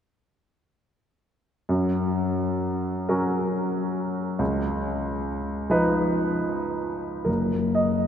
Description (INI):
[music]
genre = classical, romantic nocturne for solo piano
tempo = 35-47 BPM (dotted quarters)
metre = 6/8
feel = rubato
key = F# major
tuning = A4 = 440 Hz
[part]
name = clear grand piano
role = solo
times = 1.7-8.1 s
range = F#1 to D#5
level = -23 LUFS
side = equal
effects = none
[sound]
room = wet cathedral reverb, RT60 4.4 s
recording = none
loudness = -23 LUFS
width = side -8 dB against mid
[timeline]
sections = 1.7-7.3 A section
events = none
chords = 1.7 F#; 4.4 C#9; 7.3 F#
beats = | 1.70 3.09 | 4.40 5.71 | 7.27